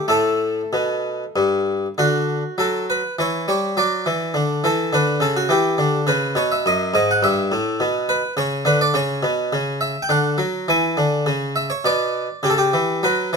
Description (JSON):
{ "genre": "classical, baroque-style suite movement for harpsichord", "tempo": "103 BPM", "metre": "3/4", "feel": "rubato", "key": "D major", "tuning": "A4 = 440 Hz", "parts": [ { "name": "harpsichord", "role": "solo", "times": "0.0-13.4 s", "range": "Gb2 to G#5", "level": "-18 LUFS", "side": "equal", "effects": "none" } ], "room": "light reverb", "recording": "none", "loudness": "-18 LUFS", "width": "side -5 dB against mid", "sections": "0.0-2.0 A section; 2.0-13.4 A section", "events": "none", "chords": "0.1 Gadd9; 2.0 D; 3.2 C#dim/E; 3.8 D; 5.5 Em; 6.7 Ebmadd11/Gb; 7.2 Em/G; 8.9 Bsus24; 10.1 D; 10.7 E7; 12.4 C#m7b5" }